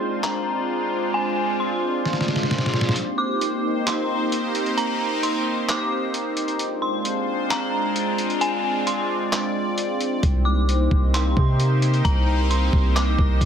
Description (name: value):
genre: hip hop, atmospheric cloud-rap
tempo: 132 BPM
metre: 4/4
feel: half-time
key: C minor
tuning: A4 = 440 Hz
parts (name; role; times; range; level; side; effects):
- dark detuned synth bell; melody; 0.0-13.5 s; Ab5 to D6; -27 LUFS; equal; chorus, low-pass filter, ping-pong delay
- sweeping resonant pad; sustained chords; 0.0-13.5 s; Ab3 to D5; -24 LUFS; equal; chorus, sidechain pumping, low-pass filter
- drifting glass-harmonics texture; texture; 0.0-2.9, 10.8-13.5 s; F4 to C6; -34 LUFS; right 3 dB; chorus, built-in reverb
- trip hop sampler-style drum kit; drums; 0.2-13.5 s; handclaps, hi-hat, kick drum, snare drum; -24 LUFS; equal; none
- long sustained 808-style bass; bass; 10.2-13.5 s; C2 to C3; -20 LUFS; equal; none
room: light reverb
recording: none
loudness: -20 LUFS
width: side -8 dB against mid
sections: 0.0-3.0 A section; 3.0-13.5 B section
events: filter sweep 0.0-3.0; drum fill 2.0-3.0; kick muted 3.0-10.2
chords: 0.0 Dm7b5; 3.0 Cm7; 6.6 Dm7b5; 10.2 Cm7